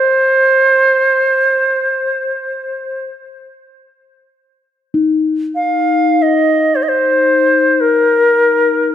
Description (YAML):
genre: world meditative, free-time meditation music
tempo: free time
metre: none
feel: none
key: unclear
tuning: A4 = 444 Hz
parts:
  - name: bright reedy bansuri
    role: melody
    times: 0.0-8.9 s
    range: Bb4 to F5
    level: -11 LUFS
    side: equal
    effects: ping-pong delay
  - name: bronze singing bowl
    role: texture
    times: 4.9-8.9 s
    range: Eb4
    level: -16 LUFS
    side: left 6 dB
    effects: none
room: wet recital hall reverb, RT60 1.4 s, small room ambience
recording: none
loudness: -11 LUFS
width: side -10 dB against mid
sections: 0.0-8.9 A section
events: none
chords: none